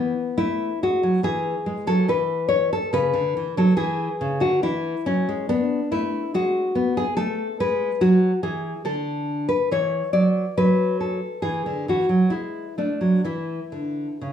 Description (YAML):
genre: classical, baroque-style dance for nylon-string guitar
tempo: 70 BPM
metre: 3/4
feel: rubato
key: unclear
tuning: A4 = 440 Hz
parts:
  - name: nylon-string guitar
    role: solo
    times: 0.0-14.3 s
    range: C#3 to D5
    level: -20 LUFS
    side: left 1 dB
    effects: none
room: moderate small room ambience, RT60 0.5 s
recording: studio reverb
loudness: -20 LUFS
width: side -9 dB against mid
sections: 0.0-14.3 A section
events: none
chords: 0.4 A5; 2.9 C#madd11; 5.5 G#m7b5; 7.2 G#m; 8.0 D; 9.7 Dmaj9/E; 10.6 D; 13.2 Bmadd11 (rootless)